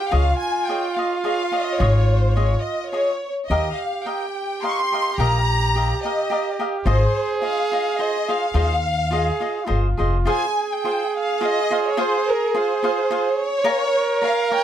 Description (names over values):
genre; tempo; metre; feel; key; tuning
mexican folk, mariachi; 106 BPM; 3/4; rubato; unclear; A4 = 444 Hz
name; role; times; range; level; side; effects
warm studio violin section; melody; 0.0-14.6 s; Bb4 to Db6; -23 LUFS; equal; none
mellow trumpet; second line; 0.0-14.6 s; Fb4 to Bb4; -25 LUFS; right 5 dB; none
cavaquinho; accompaniment; 0.1-14.6 s; F4 to Ab5; -26 LUFS; left 1 dB; none
upright bass; bass; 0.1-10.2 s; F1 to Eb2; -19 LUFS; left 1 dB; none
room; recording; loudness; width
little or no reverb; dry, close 1970s-style studio recording; -18 LUFS; side -10 dB against mid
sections
0.0-10.3 A section; 10.3-14.6 A section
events
none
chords
0.1 Dbadd9; 3.5 Ebadd9; 6.9 Ab6; 10.3 Fm; 13.7 Bbm7